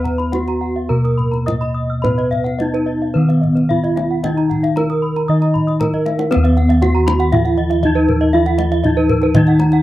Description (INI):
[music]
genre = Balinese gamelan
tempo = 106-119 BPM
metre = 4/4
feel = straight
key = Eb pelog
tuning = A4 = 442 Hz
[part]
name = gamelan-type bronze metallophone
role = melody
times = 0.0-9.8 s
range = Cb4 to Eb5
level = -18 LUFS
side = right 1 dB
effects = none
[part]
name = gamelan-type bronze metallophone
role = accompaniment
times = 0.0-9.8 s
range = Eb3 to Eb4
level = -24 LUFS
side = left 3 dB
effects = none
[part]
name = gamelan-type bronze metallophone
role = arpeggios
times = 0.0-9.7 s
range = Bb4 to Eb6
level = -25 LUFS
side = left 6 dB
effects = none
[part]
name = gamelan-type bronze metallophone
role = arpeggios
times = 0.0-9.8 s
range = Cb5 to Fb6+35c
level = -25 LUFS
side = right 6 dB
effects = none
[part]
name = gamelan-type bossed gongs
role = bass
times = 0.0-9.8 s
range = Eb2 to Cb5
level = -17 LUFS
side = equal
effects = none
[part]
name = kendang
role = percussion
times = 0.1-9.8 s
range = none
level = -23 LUFS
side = left 1 dB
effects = none
[sound]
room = light reverb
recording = dry, close 1970s-style studio recording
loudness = -13 LUFS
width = side -15 dB against mid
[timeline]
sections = 0.0-6.3 A section; 6.3-9.8 B section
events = drum fill 5.9-6.3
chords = none